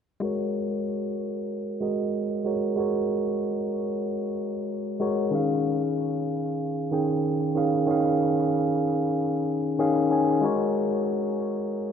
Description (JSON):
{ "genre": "chillout", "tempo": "94 BPM", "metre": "4/4", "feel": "straight", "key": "unclear", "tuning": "A4 = 440 Hz", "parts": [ { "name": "overdriven tine electric piano", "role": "accompaniment", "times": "0.2-11.9 s", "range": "D#3 to G#5", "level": "-24 LUFS", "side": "moving between left 3 dB and right 3 dB", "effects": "auto-pan, tape echo" } ], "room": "wet echo chamber reverb, RT60 1.8 s, digital ambience", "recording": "echo-heavy mix, low-pass filter", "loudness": "-24 LUFS", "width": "side -7 dB against mid", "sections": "0.2-11.9 A section", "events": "filter sweep 0.2-11.9", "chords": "0.2 G#9sus4; 5.3 D#9sus4; 10.4 G#9sus4", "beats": "| 0.22 0.86 1.50 2.14 | 2.78 3.41 4.05 4.69 | 5.33 5.97 6.61 7.24 | 7.88 8.52 9.16 9.80 | 10.44 11.07 11.71" }